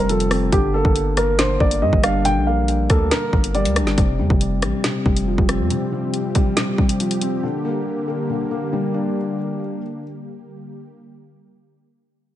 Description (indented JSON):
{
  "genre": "hip hop, drill",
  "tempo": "139 BPM",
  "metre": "4/4",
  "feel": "half-time",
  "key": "G minor",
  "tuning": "A4 = 442 Hz",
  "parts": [
    { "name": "dark concert grand piano", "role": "melody", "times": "0.0-3.7 s", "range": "G4 to G5", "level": "-22 LUFS", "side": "right 2 dB", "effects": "ping-pong delay" },
    { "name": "felt-muted upright piano", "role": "accompaniment", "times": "0.0-10.0 s", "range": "C3 to D4", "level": "-22 LUFS", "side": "left 2 dB", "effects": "none" },
    { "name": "long sustained 808-style bass", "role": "bass", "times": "0.0-5.7 s", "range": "F1 to G2", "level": "-22 LUFS", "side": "equal", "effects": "none" },
    { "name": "drill drum kit", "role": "drums", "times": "0.1-7.3 s", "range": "hi-hat, kick drum, rim click, snare drum", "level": "-20 LUFS", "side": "equal", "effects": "none" },
    { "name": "warm analog pad", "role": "sustained chords", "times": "4.0-10.8 s", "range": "D3 to G4", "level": "-28 LUFS", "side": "right 1 dB", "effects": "chorus" }
  ],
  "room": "digital ambience",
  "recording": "nothing above 10.3 kHz",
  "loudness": "-17 LUFS",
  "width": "side -12 dB against mid",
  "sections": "0.0-4.0 A section; 4.0-10.9 B section",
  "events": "none",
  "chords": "0.0 Fsus2; 0.5 Gm; 4.0 Fsus2; 7.4 Gm"
}